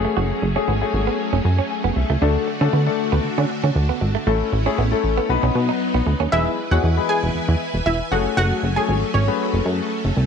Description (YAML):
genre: pop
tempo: 117 BPM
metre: 4/4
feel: straight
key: E major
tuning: A4 = 440 Hz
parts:
  - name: warm grand piano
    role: accompaniment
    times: 0.0-9.9 s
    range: G#3 to G#5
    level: -24 LUFS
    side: left 11 dB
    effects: low-pass filter
  - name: string machine, violins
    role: sustained chords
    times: 0.0-10.3 s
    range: D3 to G#5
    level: -26 LUFS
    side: equal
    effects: ensemble chorus, low-pass filter
  - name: direct-recorded clean electric guitar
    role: riff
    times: 0.0-6.3 s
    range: A3 to F#4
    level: -27 LUFS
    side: right 13 dB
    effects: lush chorus, low-pass filter
  - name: plucky analog bass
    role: bass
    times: 0.0-10.2 s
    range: E1 to D3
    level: -20 LUFS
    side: right 1 dB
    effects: none
  - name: analog pluck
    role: melody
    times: 6.3-9.2 s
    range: C#4 to G#5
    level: -23 LUFS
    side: right 2 dB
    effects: chorus, slapback echo
room: moderate echo chamber reverb, RT60 1.9 s, digital ambience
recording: 1960s-style stereo with parts hard left and right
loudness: -18 LUFS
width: side -7 dB against mid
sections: 0.0-6.3 A section; 6.3-10.3 B section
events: build-up 0.0-6.3; grand piano fill 1.2-2.2; drop 6.3-10.3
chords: 0.0 F#madd9; 2.2 D; 4.3 A; 5.3 B; 6.3 E; 8.1 F#madd9